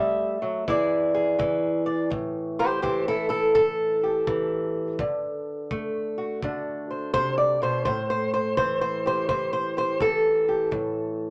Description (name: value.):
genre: acoustic country blues, solo or duo.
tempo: 84 BPM.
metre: 4/4.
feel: swing 65% on 8ths.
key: unclear.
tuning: A4 = 440 Hz.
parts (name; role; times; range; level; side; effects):
fingerpicked old ladder-braced acoustic guitar; melody; 0.0-11.3 s; A2 to E5; -25 LUFS; equal; none.
kick drum; drums; 0.7-10.9 s; none; -39 LUFS; equal; none.
room: moderate studio ambience, RT60 0.5 s.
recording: none.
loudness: -25 LUFS.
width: mono.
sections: 0.0-2.1 A section; 2.1-11.3 B section.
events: steel-string acoustic guitar solo 2.1-11.3.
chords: 0.0 A5; 0.7 E7; 2.1 A5; 5.0 D7; 7.9 A7(no3).